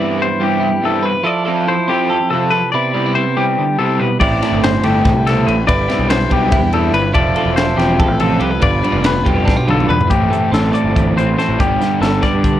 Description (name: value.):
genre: math rock and midwest emo.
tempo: 285 BPM (eighths).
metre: 7/8.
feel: straight.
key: C major.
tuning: A4 = 441 Hz.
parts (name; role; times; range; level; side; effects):
twelve-string electric guitar; accompaniment; 0.0-12.6 s; G2 to B4; -18 LUFS; right 4 dB; none.
twangy electric guitar; arpeggios; 0.0-12.6 s; G4 to D5; -18 LUFS; left 6 dB; none.
overdriven semi-hollow guitar; riff; 0.0-12.6 s; G2 to B4; -20 LUFS; equal; none.
fuzz picked electric bass; bass; 4.2-12.6 s; E1 to G2; -19 LUFS; equal; overdrive.
crisp fusion drum kit; drums; 4.2-12.5 s; crash cymbal, hi-hat, kick drum, ride cymbal, snare drum, toms; -19 LUFS; equal; none.
room: little or no reverb.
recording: worn, warbling old tape, cassette tape, warbly pitch drift.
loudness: -12 LUFS.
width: side -12 dB against mid.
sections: 0.0-10.1 A section; 10.1-12.6 B section.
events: drum fill 9.5-10.1.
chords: 0.0 Cmaj7/G; 1.3 Fmaj7; 2.7 Cmaj7; 4.2 Cmaj7/G; 7.2 Fmaj7; 8.6 G7; 10.1 Am7; 11.6 Gadd9.